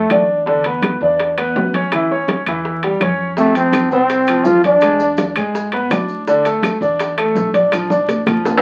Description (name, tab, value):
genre	latin, salsa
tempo	165 BPM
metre	4/4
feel	straight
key	unclear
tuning	A4 = 439 Hz
part	bright trombone	melody	0.0-0.3, 3.4-5.3 s	A3 to F4	-16 LUFS	equal	none
part	bright grand piano	accompaniment	0.0-8.6 s	C3 to D5	-19 LUFS	equal	none
part	upright bass	bass	0.0-8.6 s	A1 to A2	-32 LUFS	equal	none
part	bongos	percussion	0.1-8.5 s	none	-28 LUFS	equal	none
part	claves	percussion	0.1-8.5 s	none	-30 LUFS	equal	none
part	congas	percussion	0.1-8.5 s	none	-25 LUFS	equal	none
part	timbales	percussion	0.1-8.6 s	none	-24 LUFS	equal	none
part	maracas	percussion	3.4-8.6 s	none	-43 LUFS	equal	none
room	wet club reverb, RT60 0.5 s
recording	very old 78 rpm record, vinyl crackle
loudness	-16 LUFS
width	mono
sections	0.0-8.6 A section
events	drum fill 7.7-8.6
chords	0.5 E5; 1.9 A7b13; 3.4 F5; 4.8 E7; 6.3 Asus4; 7.7 Bb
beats	0.11 | 0.47 0.83 1.20 1.56 | 1.92 2.28 2.65 3.01 | 3.37 3.73 4.10 4.46 | 4.82 5.19 5.55 5.91 | 6.27 6.64 7.00 7.36 | 7.73 8.09 8.45